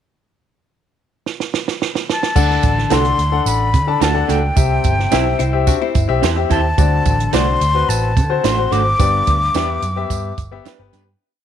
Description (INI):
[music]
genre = uptempo 1960s-style soul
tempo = 108 BPM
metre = 4/4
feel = straight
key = D mixolydian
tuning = A4 = 439 Hz
[part]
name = compact cocktail drum kit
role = drums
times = 1.3-11.1 s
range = crash cymbal, hi-hat, kick drum, snare drum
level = -19 LUFS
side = right 4 dB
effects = none
[part]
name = breathy jazz flute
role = melody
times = 2.1-10.7 s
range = G5 to D6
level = -20 LUFS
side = left 2 dB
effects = none
[part]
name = clear baby grand piano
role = accompaniment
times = 2.4-11.1 s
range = G2 to A5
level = -20 LUFS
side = left 9 dB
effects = none
[part]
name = vintage muted picked electric bass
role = bass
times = 2.4-11.1 s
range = G1 to D3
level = -19 LUFS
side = right 1 dB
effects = none
[part]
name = tambourine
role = percussion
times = 2.4-11.1 s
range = none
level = -31 LUFS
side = right 16 dB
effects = none
[part]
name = electric guitar through a small old amp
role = stabs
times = 2.9-11.0 s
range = A3 to C5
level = -24 LUFS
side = right 12 dB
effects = wide subtle chorus
[part]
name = archtop guitar, miked and amplified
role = riff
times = 5.4-6.6 s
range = C4 to F#4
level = -24 LUFS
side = left 10 dB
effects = none
[sound]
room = light reverb, small room ambience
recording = 1960s-style stereo with parts hard left and right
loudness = -14 LUFS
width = side -9 dB against mid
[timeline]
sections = 0.1-2.4 pickup bar; 2.4-11.2 verse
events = drum fill 1.2-2.4; fade-out 9.0-11.2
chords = 0.1 N.C.; 2.4 D; 4.6 C; 6.8 D7; 9.0 G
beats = | 0.14 0.70 1.25 1.80 | 2.35 2.90 3.46 4.01 | 4.57 5.12 5.67 6.23 | 6.78 7.33 7.89 8.44 | 9.00 9.55 10.10 10.65